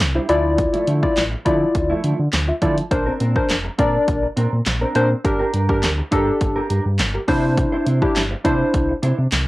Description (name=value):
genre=dance-pop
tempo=103 BPM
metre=4/4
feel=straight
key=unclear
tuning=A4 = 440 Hz
part: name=mellow electric guitar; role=riff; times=0.0-9.4 s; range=F3 to C5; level=-26 LUFS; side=right 2 dB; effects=lush chorus, cassette tape
part: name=sub bass with octave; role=bass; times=0.0-9.5 s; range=F1 to D3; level=-21 LUFS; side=equal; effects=sidechain pumping
part: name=punchy analog drum machine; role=drums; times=0.0-9.5 s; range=handclaps, hi-hat, kick drum, snare drum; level=-22 LUFS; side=equal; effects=cassette tape
part: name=warm analog keys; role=accompaniment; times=0.2-8.9 s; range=D4 to E5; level=-19 LUFS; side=left 1 dB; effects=chorus, sidechain pumping, cassette tape
room=light reverb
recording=home recording on cassette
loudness=-16 LUFS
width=side -19 dB against mid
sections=0.0-9.5 A section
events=none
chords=0.3 Dmadd9; 2.9 Bbadd9; 5.2 Gm; 7.3 Cadd9